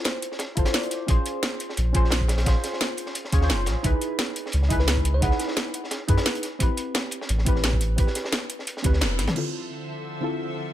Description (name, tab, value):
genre	liquid drum and bass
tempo	174 BPM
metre	4/4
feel	swing 53% on 16ths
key	unclear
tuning	A4 = 440 Hz
part	deep mellow chord stab	accompaniment	0.0-10.7 s	D3 to Db5	-30 LUFS	equal	chorus, tape echo
part	crunchy breakbeat drum kit	drums	0.0-9.4 s	hi-hat, snare drum	-33 LUFS	equal	high-pass filter on hats, high-pass filter on snare, high-pass filter on room
part	bell-like FM electric piano	melody	0.1-1.1, 4.8-5.5 s	B4 to F#5	-35 LUFS	right 1 dB	chorus, ping-pong delay
part	drum and bass drum kit	drums	0.1-9.4 s	crash cymbal, hi-hat, snare drum, toms	-27 LUFS	equal	none
part	warm sub bass	bass	0.6-9.3 s	E1 to F#2	-23 LUFS	equal	none
part	electronic kick drum	drums	0.6-8.9 s	none	-23 LUFS	equal	none
part	glassy FM pad	sustained chords	9.5-10.7 s	D3 to E5	-34 LUFS	equal	ensemble chorus, built-in reverb, tremolo, sidechain pumping
room	little or no reverb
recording	none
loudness	-22 LUFS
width	side -12 dB against mid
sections	0.0-9.4 A section; 9.4-10.7 B section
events	kick drops out 9.0-9.4; band accent 9.0; drum fill 9.2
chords	0.0 Dm9; 1.1 Bbm9; 3.8 C#m9; 6.4 Am9; 9.4 Dm9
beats	0.05 0.40 0.74 | 1.08 1.43 1.77 2.12 | 2.46 2.81 3.15 3.50 | 3.84 4.19 4.53 4.88 | 5.22 5.57 5.91 6.26 | 6.60 6.95 7.29 7.64 | 7.98 8.33 8.67 9.02 | 9.36 9.71 10.05 10.39